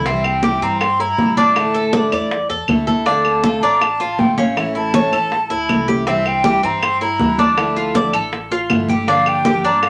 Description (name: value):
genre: latin, Cuban son and guajira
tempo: 160 BPM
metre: 4/4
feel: straight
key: D minor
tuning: A4 = 440 Hz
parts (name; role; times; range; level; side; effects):
- picked steel-string acoustic guitar; accompaniment; 0.0-9.9 s; C3 to G4; -25 LUFS; equal; none
- Cuban tres; arpeggios; 0.0-9.9 s; C4 to D5; -21 LUFS; equal; none
- upright bass; bass; 0.0-9.9 s; G1 to A2; -33 LUFS; equal; none
- breathy mellow silver concert flute; melody; 0.1-9.9 s; E5 to C6; -23 LUFS; equal; none
- bongos; percussion; 0.1-9.9 s; none; -30 LUFS; equal; none
- congas; percussion; 0.1-9.9 s; none; -22 LUFS; equal; none
- claves; percussion; 0.2-9.9 s; none; -25 LUFS; equal; none
room: wet small room reverb, RT60 0.5 s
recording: none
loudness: -17 LUFS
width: mono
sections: 0.1-9.9 A section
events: none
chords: 0.1 C; 1.6 Asus4; 3.1 Dm7; 4.6 A; 6.1 Cadd9; 7.6 Dmadd9; 9.1 Gm7